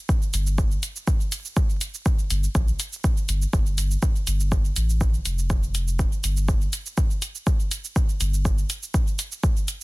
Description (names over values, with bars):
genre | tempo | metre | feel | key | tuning
dub techno | 122 BPM | 4/4 | swing 53% on 16ths | G minor | A4 = 440 Hz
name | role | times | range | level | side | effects
electronic cabasa and hi-hat | drums | 0.1-9.8 s | none | -31 LUFS | right 1 dB | none
electronic kick drum | drums | 0.1-9.5 s | none | -22 LUFS | equal | none
warm sub bass | bass | 0.3-8.6 s | F1 to Bb1 | -23 LUFS | equal | tube saturation, sidechain pumping
room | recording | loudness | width
little or no reverb | dense, heavily limited modern master, vinyl crackle | -21 LUFS | side -22 dB against mid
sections
0.0-9.8 A section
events
none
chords
none